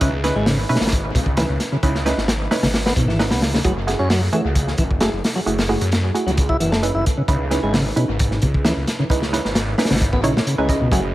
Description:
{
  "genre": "breakbeat, breaks",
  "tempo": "132 BPM",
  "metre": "4/4",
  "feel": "straight",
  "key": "unclear",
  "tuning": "A4 = 440 Hz",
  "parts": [
    { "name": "tonewheel organ", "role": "riff", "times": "0.0-11.0 s", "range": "B2 to E4", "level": "-23 LUFS", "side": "equal", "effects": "overdrive, dub echo" },
    { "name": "filtered dub chord stab", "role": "stabs", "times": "0.0-11.0 s", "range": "A3 to D#5", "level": "-24 LUFS", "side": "right 2 dB", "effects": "chorus, cassette tape, dub echo" },
    { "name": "phased detuned saw bass", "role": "bass", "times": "0.0-11.1 s", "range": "F#1 to F#2", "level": "-23 LUFS", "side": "equal", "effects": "phaser, tube saturation" },
    { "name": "crunchy breakbeat drum kit", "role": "drums", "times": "0.0-11.0 s", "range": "hi-hat, kick drum, snare drum", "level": "-20 LUFS", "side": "equal", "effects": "dub echo" }
  ],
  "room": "light reverb, small room ambience",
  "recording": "echo-heavy mix, vinyl crackle",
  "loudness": "-16 LUFS",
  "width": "side -16 dB against mid",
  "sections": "0.0-11.1 A section",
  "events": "none",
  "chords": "0.0 C#m9; 3.6 F#m9; 7.1 C#m9",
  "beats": "| 0.01 0.47 0.92 1.38 | 1.83 2.28 2.74 3.19 | 3.65 4.10 4.56 5.01 | 5.47 5.92 6.38 6.83 | 7.28 7.74 8.19 8.65 | 9.10 9.56 10.01 10.47 | 10.92"
}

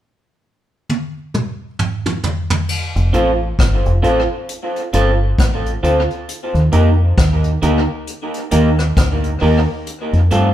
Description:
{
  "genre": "roots reggae",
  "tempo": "67 BPM",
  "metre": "4/4",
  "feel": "swing 59% on 16ths",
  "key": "F mixolydian",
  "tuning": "A4 = 439 Hz",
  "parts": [
    { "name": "vintage brush drum kit", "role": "drums", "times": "0.9-10.5 s", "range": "crash cymbal, hi-hat, kick drum, rim click, toms", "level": "-19 LUFS", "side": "equal", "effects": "tape echo" },
    { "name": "deep dub fingered electric bass", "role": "bass", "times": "3.0-10.5 s", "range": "F1 to G2", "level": "-15 LUFS", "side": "equal", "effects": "none" },
    { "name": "electric guitar through a small old amp", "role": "accompaniment", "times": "3.1-10.5 s", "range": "A3 to C5", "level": "-18 LUFS", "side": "right 1 dB", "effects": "tape echo" }
  ],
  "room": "moderate large studio reverb, RT60 0.9 s",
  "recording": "band playing live in one room",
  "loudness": "-14 LUFS",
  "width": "side -12 dB against mid",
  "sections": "0.0-2.7 A section; 2.7-10.5 B section",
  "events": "drum fill 0.9-2.7",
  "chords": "0.0 N.C.; 2.7 F; 6.3 Eb; 9.9 F",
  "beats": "0.00 0.89 1.79 | 2.69 3.59 4.49 5.38 | 6.28 7.18 8.08 8.98 | 9.87"
}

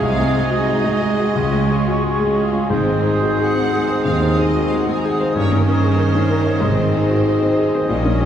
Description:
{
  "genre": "classical, romantic movement for piano and orchestra",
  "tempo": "92 BPM",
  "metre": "4/4",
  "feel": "uneven beats, rubato",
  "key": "unclear",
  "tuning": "A4 = 440 Hz",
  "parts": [
    { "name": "clear grand piano", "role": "melody", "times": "0.0-8.3 s", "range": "C2 to Db5", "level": "-19 LUFS", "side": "equal", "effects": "none" },
    { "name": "rich symphonic violin section", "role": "melody", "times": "0.0-7.5 s", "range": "Bb4 to Bb5", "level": "-30 LUFS", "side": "left 1 dB", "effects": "none" },
    { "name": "clear oboe", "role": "second line", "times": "0.0-8.3 s", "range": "Ab4 to Eb5", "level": "-29 LUFS", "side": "right 4 dB", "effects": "none" },
    { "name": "silver concert flute", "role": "second line", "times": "0.0-8.3 s", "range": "Db6 to Eb6", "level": "-29 LUFS", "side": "equal", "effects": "none" },
    { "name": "warm clarinet", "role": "second line", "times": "0.0-8.3 s", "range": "Db4 to Gb4", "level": "-28 LUFS", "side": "equal", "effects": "none" },
    { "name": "warm symphonic violin section", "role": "second line", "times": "0.0-8.3 s", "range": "G3 to Eb5", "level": "-29 LUFS", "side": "left 2 dB", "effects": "none" },
    { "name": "mellow bassoon", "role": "accompaniment", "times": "0.0-8.3 s", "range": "G3 to Bb3", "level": "-27 LUFS", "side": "right 3 dB", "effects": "none" },
    { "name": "rich symphonic viola section", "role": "accompaniment", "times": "0.0-8.3 s", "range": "Eb3 to Eb4", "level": "-25 LUFS", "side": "right 1 dB", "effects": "none" },
    { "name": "mellow French horn section", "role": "sustained chords", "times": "0.0-8.3 s", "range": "Eb3 to Gb4", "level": "-25 LUFS", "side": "left 2 dB", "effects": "none" },
    { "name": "clear symphonic cello section", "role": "bass", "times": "0.0-8.3 s", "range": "Eb2 to Db3", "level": "-26 LUFS", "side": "right 2 dB", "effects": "none" },
    { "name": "rich symphonic double bass section", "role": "bass", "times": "0.0-8.3 s", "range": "G1 to Eb2", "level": "-26 LUFS", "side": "right 2 dB", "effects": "none" },
    { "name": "timpani", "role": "percussion", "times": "2.7-7.5 s", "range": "Ab2", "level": "-26 LUFS", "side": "equal", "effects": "none" }
  ],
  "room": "wet recital hall reverb, RT60 1.7 s",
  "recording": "heard from further back in the room",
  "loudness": "-15 LUFS",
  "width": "side -9 dB against mid",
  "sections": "0.0-8.3 A section",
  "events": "none",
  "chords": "0.0 Ab7/C; 1.4 Db; 2.7 Ab; 5.4 Eb7/G; 6.6 Ab",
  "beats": "| 0.03 0.70 1.36 2.04 | 2.71 3.38 4.05 4.71 | 5.36 5.99 6.62 7.25 | 7.88"
}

